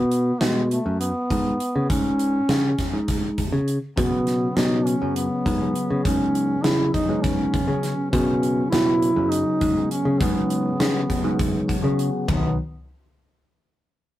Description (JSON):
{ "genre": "progressive instrumental, band music in an uneven meter", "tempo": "202 BPM (eighths)", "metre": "7/8", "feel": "straight", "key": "B major", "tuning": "A4 = 440 Hz", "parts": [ { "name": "mellow duduk", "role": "melody", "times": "0.0-12.6 s", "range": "G#3 to E4", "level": "-24 LUFS", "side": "right 1 dB", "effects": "none" }, { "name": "picked electric bass", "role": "bass", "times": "0.0-12.6 s", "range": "B1 to C#3", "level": "-24 LUFS", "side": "equal", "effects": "none" }, { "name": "gated 80s drum kit", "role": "drums", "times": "0.1-12.4 s", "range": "hi-hat, kick drum, ride cymbal, snare drum, toms", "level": "-26 LUFS", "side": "equal", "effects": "none" }, { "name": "bell-like tine electric piano", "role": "accompaniment", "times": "4.0-12.6 s", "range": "C#3 to F#5", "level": "-26 LUFS", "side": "left 1 dB", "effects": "phaser" } ], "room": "moderate studio reverb, RT60 0.6 s", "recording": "rough rehearsal-room recording, tube saturation", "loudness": "-20 LUFS", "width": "side -14 dB against mid", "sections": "0.0-12.3 A section; 12.3-14.2 B section", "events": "tine electric piano fill 11.4-12.3", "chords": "0.0 Bsus2; 12.3 B" }